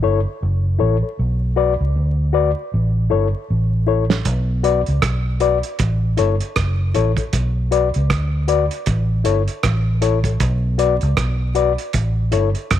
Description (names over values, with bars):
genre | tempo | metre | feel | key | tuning
roots reggae | 78 BPM | 4/4 | swing 59% on 16ths | B minor | A4 = 440 Hz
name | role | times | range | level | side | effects
mellow reed electric piano | stabs | 0.0-12.5 s | E4 to D5 | -21 LUFS | left 8 dB | fast tremolo
vintage muted fingered electric bass | bass | 0.0-12.8 s | F#1 to D2 | -18 LUFS | equal | none
cloth-damped thuddy drum kit | drums | 4.1-12.8 s | hi-hat, kick drum, rim click, snare drum | -22 LUFS | right 3 dB | none
room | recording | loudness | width
studio reverb | 1960s-style stereo, vinyl crackle | -16 LUFS | side -11 dB against mid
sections
0.0-12.8 A section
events
drum fill 3.5-4.3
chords
0.0 A; 1.2 Bm; 2.7 A; 4.3 Bm; 5.8 A; 7.3 Bm; 8.9 A; 10.4 Bm; 11.9 A